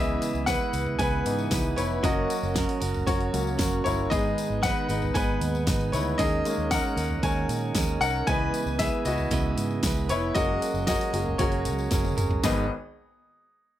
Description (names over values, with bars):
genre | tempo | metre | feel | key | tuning
piano-driven pop | 115 BPM | 4/4 | straight | G# minor | A4 = 437 Hz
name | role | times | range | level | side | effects
clear concert grand piano | accompaniment | 0.0-12.7 s | G#1 to G#5 | -28 LUFS | left 3 dB | plate reverb
direct-recorded clean electric guitar | riff | 0.0-12.7 s | G#2 to B4 | -30 LUFS | right 6 dB | none
vintage muted fingered electric bass | bass | 0.0-12.7 s | E#1 to A#2 | -30 LUFS | equal | none
pop drum kit | drums | 0.2-12.6 s | hi-hat, kick drum, snare drum, toms | -29 LUFS | equal | none
tambourine | percussion | 0.2-12.7 s | none | -40 LUFS | left 7 dB | none
room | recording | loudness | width
moderate studio reverb, RT60 0.5 s | none | -23 LUFS | side -12 dB against mid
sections
0.0-12.4 A section; 12.4-13.8 B section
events
grand piano solo 0.0-12.4; drum fill 11.9-12.4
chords
0.0 C#m7; 2.0 F#; 4.1 G#m; 6.2 D#7sus4; 8.3 C#m7; 10.4 F#add9; 12.4 G#m